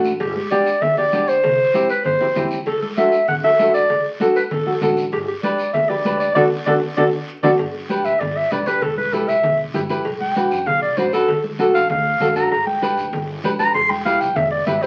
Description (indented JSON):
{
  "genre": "latin, cumbia",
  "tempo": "195 BPM",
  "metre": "4/4",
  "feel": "straight",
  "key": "G major",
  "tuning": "A4 = 441 Hz",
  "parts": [
    { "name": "mellow clarinet", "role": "melody", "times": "0.0-14.9 s", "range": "G4 to C6", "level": "-20 LUFS", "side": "equal", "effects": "none" },
    { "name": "nylon-string guitar", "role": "accompaniment", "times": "0.0-14.9 s", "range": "A3 to B4", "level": "-23 LUFS", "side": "equal", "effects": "none" },
    { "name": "upright bass", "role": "bass", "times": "0.0-14.9 s", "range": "E1 to G2", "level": "-37 LUFS", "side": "equal", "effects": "none" },
    { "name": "guiro", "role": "percussion", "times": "0.0-14.9 s", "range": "none", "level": "-38 LUFS", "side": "equal", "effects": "none" },
    { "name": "cowbell and timbales", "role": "percussion", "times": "0.2-14.5 s", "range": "none", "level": "-32 LUFS", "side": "equal", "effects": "none" },
    { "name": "congas", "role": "percussion", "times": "0.4-14.8 s", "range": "none", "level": "-30 LUFS", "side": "equal", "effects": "none" }
  ],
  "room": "wet studio reverb, RT60 0.8 s",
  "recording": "very old 78 rpm record, vinyl crackle",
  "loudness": "-19 LUFS",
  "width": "mono",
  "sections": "0.0-7.6 A section; 7.6-14.9 B section",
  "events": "band accent 6.4-7.6; drum fill 7.0-7.6; clarinet solo 7.6-14.9",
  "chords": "0.2 G; 1.4 C; 2.7 D; 5.1 G; 6.4 D; 7.6 G; 8.8 Em; 10.1 Bm; 11.3 D; 12.5 G; 13.7 Em"
}